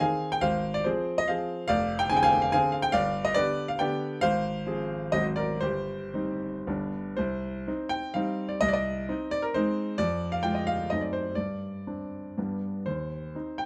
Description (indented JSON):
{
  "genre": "classical, romantic triple-time dance for piano with dotted rhythms",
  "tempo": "111-156 BPM",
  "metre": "3/4",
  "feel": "rubato",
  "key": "C minor",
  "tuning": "A4 = 440 Hz",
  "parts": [
    { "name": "clear grand piano", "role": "solo", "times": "0.0-13.7 s", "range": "F1 to Ab5", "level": "-28 LUFS", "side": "equal", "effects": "none" }
  ],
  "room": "little or no reverb",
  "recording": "close, detailed microphones",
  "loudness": "-29 LUFS",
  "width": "mono",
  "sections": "0.0-7.2 A section; 7.2-13.7 B section",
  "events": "none",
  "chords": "0.4 Fm/Ab; 1.7 Dm7b5/F; 2.9 G; 4.2 Fm/Ab; 5.1 Ab7; 5.6 Cm/G; 6.7 G; 7.2 Cm; 8.6 Ab/C; 10.0 Fm13; 10.9 F#dim7; 11.4 Gsus4; 12.4 G; 12.9 Cm/Eb",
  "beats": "0.01 | 0.43 0.86 1.29 | 1.69 2.10 2.53 | 2.93 3.36 3.80 | 4.22 4.67 5.13 | 5.62 6.13 6.67 | 7.18 7.67 8.15 | 8.62 9.08 9.55 | 9.99 10.44 10.90 | 11.35 11.86 12.37 | 12.86 13.34"
}